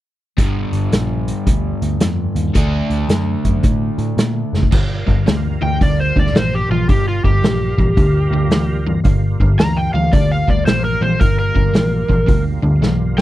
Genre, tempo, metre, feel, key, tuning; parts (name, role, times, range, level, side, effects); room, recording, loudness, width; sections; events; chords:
blues rock power trio and southern rock; 111 BPM; 4/4; swing 65% on 8ths; G minor; A4 = 440 Hz
crunchy overdriven guitar; riff; 0.4-13.2 s; G2 to D4; -20 LUFS; equal
vintage muted picked electric bass; bass; 0.4-13.2 s; F#1 to Bb2; -19 LUFS; equal
vintage drum kit; drums; 0.4-13.2 s; crash cymbal, hi-hat, kick drum, snare drum; -17 LUFS; equal
overdriven tonewheel organ; sustained chords; 4.7-13.2 s; G3 to Bb4; -31 LUFS; right 4 dB; slow rotary speaker, chorus vibrato
overdriven slide guitar; melody; 5.6-13.2 s; F4 to Bb5; -20 LUFS; equal
little or no reverb; -14 LUFS; side -14 dB against mid
0.4-4.7 A section; 4.7-13.2 B section
drum fill 4.5, 12.8-13.2
0.4 Gm; 2.6 D; 4.7 Gm7